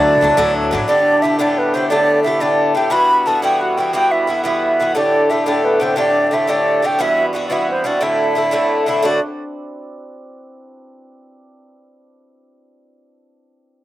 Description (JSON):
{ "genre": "celtic folk, Celtic jig", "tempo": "118 BPM (dotted quarters)", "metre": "6/8", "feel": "straight", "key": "D mixolydian", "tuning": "A4 = 440 Hz", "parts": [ { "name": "wooden flute", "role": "melody", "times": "0.0-9.2 s", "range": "B4 to B5", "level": "-16 LUFS", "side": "right 1 dB", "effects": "none" }, { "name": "accordion", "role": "second line", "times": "0.0-0.5 s", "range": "D4", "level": "-23 LUFS", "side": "left 3 dB", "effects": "none" }, { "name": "hammered dulcimer", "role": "second line", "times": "0.0-11.7 s", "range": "B3 to B4", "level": "-23 LUFS", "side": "right 2 dB", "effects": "slapback echo" }, { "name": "Irish bouzouki", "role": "accompaniment", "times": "0.0-9.2 s", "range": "G2 to G4", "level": "-18 LUFS", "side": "left 2 dB", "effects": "slapback echo" }, { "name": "upright bass", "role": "bass", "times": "0.0-0.8 s", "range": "A1 to D2", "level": "-24 LUFS", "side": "equal", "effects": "none" } ], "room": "little or no reverb", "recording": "recorded outdoors, with no room sound", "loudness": "-13 LUFS", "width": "side -14 dB against mid", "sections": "0.9-9.0 A section; 9.0-10.1 B section", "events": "none", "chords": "0.0 D; 0.9 Dsus4; 2.9 Emadd9; 5.0 Dsus4; 7.0 Emadd9; 8.0 Dsus2; 9.0 D" }